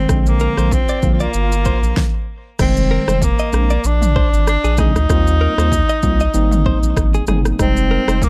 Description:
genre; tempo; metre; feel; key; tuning
afrobeats; 96 BPM; 4/4; swing 55% on 16ths; F dorian; A4 = 441 Hz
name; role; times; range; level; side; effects
breathy tenor saxophone; melody; 0.0-8.3 s; Bb3 to Eb4; -23 LUFS; equal; delay
mellow tine electric piano; accompaniment; 0.0-8.2 s; D3 to F4; -23 LUFS; equal; none
round analog bass; bass; 0.0-8.3 s; F1 to Eb2; -19 LUFS; equal; none
swell; sound effects; 0.8-2.0 s; none; -34 LUFS; equal; none
deep house drum kit; drums; 0.1-8.3 s; crash cymbal, kick drum, rim click, shaker, snare drum, toms; -21 LUFS; equal; overdrive
direct-recorded clean electric guitar; riff; 0.4-8.2 s; Ab4 to Eb5; -28 LUFS; equal; delay
room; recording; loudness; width
little or no reverb; dark, warm production; -16 LUFS; mono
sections
0.0-2.6 A section; 2.6-8.3 B section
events
swell 0.8-2.6; stop 2.0-2.6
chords
0.1 Bb7; 1.0 Gm7; 2.6 Fm7; 3.5 Bb7; 5.1 Eb69; 6.3 Abmaj7; 7.6 Fm7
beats
| 0.09 0.72 1.34 1.97 | 2.59 3.22 3.84 4.47 | 5.09 5.72 6.34 6.97 | 7.59 8.22

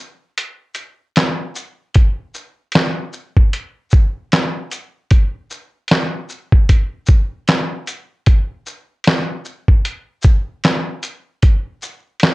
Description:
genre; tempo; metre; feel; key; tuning
hip hop; 76 BPM; 4/4; swing 59% on 16ths; none; none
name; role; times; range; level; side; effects
lo-fi sampler-style drum kit; drums; 0.4-12.3 s; handclaps, hi-hat, kick drum, shaker, snare drum; -13 LUFS; equal; none
room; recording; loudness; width
light reverb; cassette tape; -15 LUFS; side -21 dB against mid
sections
0.0-2.0 A section; 2.0-12.3 B section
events
break 0.0-2.0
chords
none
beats
0.38 1.16 | 1.95 2.74 3.53 4.32 | 5.11 5.90 6.69 7.48 | 8.27 9.06 9.85 10.64 | 11.43 12.22

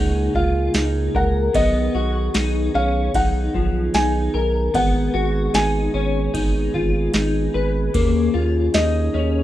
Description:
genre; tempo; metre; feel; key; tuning
dream pop; 75 BPM; 4/4; straight; B lydian; A4 = 440 Hz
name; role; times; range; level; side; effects
felt-muted upright piano; melody; 0.0-9.4 s; D#5 to G#5; -24 LUFS; equal; tape echo
mellow tonewheel organ; sustained chords; 0.0-9.4 s; C#3 to G#4; -25 LUFS; right 3 dB; slow rotary speaker, plate reverb
clean electric guitar; arpeggios; 0.0-9.4 s; E#3 to B4; -23 LUFS; left 4 dB; ensemble chorus, tape echo, plate reverb
saturated sub bass; bass; 0.0-9.4 s; G#1 to D#2; -22 LUFS; equal; none
booming analog drum machine; drums; 0.3-8.9 s; kick drum, ride cymbal, snare drum, tambourine; -23 LUFS; equal; none
room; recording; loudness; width
moderate studio reverb, RT60 0.6 s; rough home demo mix; -17 LUFS; side -13 dB against mid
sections
0.0-9.4 A section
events
none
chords
0.0 F#add9/C#; 1.5 B; 4.7 G#m7; 7.9 D#5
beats
0.74 | 1.54 2.34 3.14 3.94 | 4.74 5.54 6.34 7.14 | 7.94 8.74

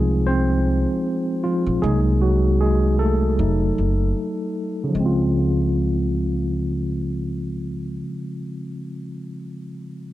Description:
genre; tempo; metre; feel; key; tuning
lo-fi hip hop; 77 BPM; 4/4; swing 57% on 16ths; Db major; A4 = 443 Hz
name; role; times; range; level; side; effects
tine electric piano; accompaniment; 0.0-10.1 s; Db3 to C5; -22 LUFS; equal; fast stereo tremolo, cassette tape, low-pass filter
upright bass; bass; 0.0-8.0 s; F1 to Db2; -22 LUFS; equal; none
room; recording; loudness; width
moderate plate reverb, RT60 3.4 s; dark, warm production; -19 LUFS; side -15 dB against mid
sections
0.0-4.9 A section; 4.9-8.1 B section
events
tine electric piano solo 0.0-4.9; filter sweep on tine electric piano 0.0-4.9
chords
0.0 Dbmaj7 (rootless); 1.8 Cm7b5; 3.4 F7b9; 4.9 Dbmaj7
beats
0.26 1.04 | 1.82 2.60 3.38 4.16 | 4.94 5.71 6.49 7.27

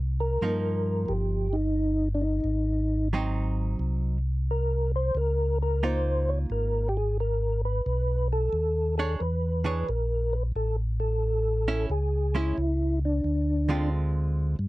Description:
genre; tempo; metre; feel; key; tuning
soul jazz organ trio; 89 BPM; 4/4; swing 67% on 8ths; unclear; A4 = 440 Hz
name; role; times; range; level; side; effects
mellow tonewheel organ; bass; 0.0-14.7 s; G1 to G2; -27 LUFS; equal; slow rotary speaker
percussive tonewheel organ; melody; 0.2-13.9 s; D4 to Db5; -28 LUFS; equal; slow rotary speaker, chorus vibrato
archtop guitar, miked and amplified; accompaniment; 0.4-14.6 s; D3 to C#5; -32 LUFS; right 3 dB; none
room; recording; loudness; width
light reverb; dark, warm production; -24 LUFS; side -19 dB against mid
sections
0.0-14.7 A section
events
none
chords
0.0 Cm7; 2.5 Ab7; 5.2 Db69; 7.9 Bm9; 9.2 E6; 10.6 A; 13.3 Dm7b5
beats
0.43 1.10 1.78 | 2.46 3.13 3.81 4.48 | 5.16 5.83 6.51 7.18 | 7.86 8.53 9.21 9.88 | 10.56 11.23 11.90 12.58 | 13.25 13.93 14.60

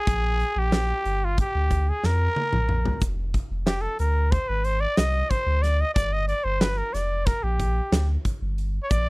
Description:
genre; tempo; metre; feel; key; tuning
progressive instrumental, band music in an uneven meter; 183 BPM (eighths); 9/8; straight; unclear; A4 = 440 Hz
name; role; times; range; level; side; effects
growling trumpet; melody; 0.0-9.1 s; F4 to Eb5; -26 LUFS; equal; none
warm sub bass; bass; 0.1-9.1 s; F1 to F2; -24 LUFS; equal; none
big rock drum kit; drums; 0.1-9.1 s; hi-hat, kick drum, snare drum, toms; -25 LUFS; equal; none
egg shaker; percussion; 3.0-9.1 s; none; -44 LUFS; left 5 dB; none
room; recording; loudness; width
little or no reverb; dry, close 1970s-style studio recording; -22 LUFS; side -26 dB against mid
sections
0.0-9.1 A section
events
trumpet solo 0.0-9.1; drum fill 2.0-3.0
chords
0.0 Bb; 3.0 Fm; 6.0 Gm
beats
| 0.07 0.40 0.72 1.05 1.38 1.70 2.03 2.36 2.69 | 3.01 3.34 3.67 4.00 4.32 4.65 4.98 5.30 5.63 | 5.96 6.29 6.62 6.94 7.27 7.60 7.93 8.26 8.58 | 8.91

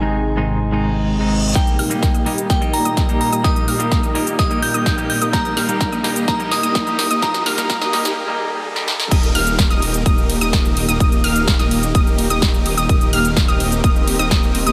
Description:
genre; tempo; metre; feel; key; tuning
EDM, festival progressive house; 127 BPM; 4/4; straight; Eb major; A4 = 440 Hz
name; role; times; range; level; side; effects
glassy synth bell; melody; 0.0-8.1 s; G5 to G6; -26 LUFS; equal; chorus, diffuse ambient delay
semi-hollow electric guitar; accompaniment; 0.0-9.0 s; Ab2 to G4; -28 LUFS; equal; tremolo, sidechain pumping, diffuse ambient delay
lush unison pad; sustained chords; 0.0-14.7 s; Bb2 to G4; -28 LUFS; equal; chorus, sidechain pumping
detuned saw bass; bass; 0.0-1.5, 9.1-14.7 s; Eb1 to Ab1; -25 LUFS; equal; sidechain pumping
reverse cymbal and riser; sound effects; 0.8-9.1 s; none; -34 LUFS; equal; none
unison pluck; arpeggios; 1.6-14.7 s; Eb6 to F6; -27 LUFS; equal; sidechain pumping, diffuse ambient delay
dense compressed supersaw; riff; 1.6-14.7 s; Bb3 to F5; -25 LUFS; equal; sidechain pumping, low-pass filter, diffuse ambient delay
big-room dance drum kit; drums; 1.6-14.7 s; crash cymbal, hi-hat, ride cymbal, shaker, snare drum; -25 LUFS; equal; high-pass filter on snare, low-pass filter on snare, high-pass filter on hats, low-pass filter on hats, high-pass filter on perc, low-pass filter on perc, high-pass filter on cymbals, low-pass filter on cymbals
electronic kick drum; drums; 1.6-14.4 s; none; -19 LUFS; equal; overdrive
room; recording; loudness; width
wet cathedral reverb, RT60 5.7 s; dreamy mix soaked in reverb, high-pass filter; -17 LUFS; mono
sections
0.0-1.6 A section; 1.6-9.1 B section; 9.1-14.7 C section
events
reverse cymbal 0.8-1.6; build-up 1.6-9.1; drum fill 1.6-8.2, 8.8-9.1; filter sweep on supersaw synth 1.6-9.1; filter sweep 1.6-9.1; break 8.2-9.1; drop 9.1-14.7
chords
0.0 Ab; 1.6 Eb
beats
0.14 0.61 1.08 | 1.55 2.03 2.50 2.97 | 3.44 3.92 4.39 4.86 | 5.33 5.81 6.28 6.75 | 7.22 7.70 8.17 8.64 | 9.11 9.59 10.06 10.53 | 11.00 11.48 11.95 12.42 | 12.89 13.37 13.84 14.31

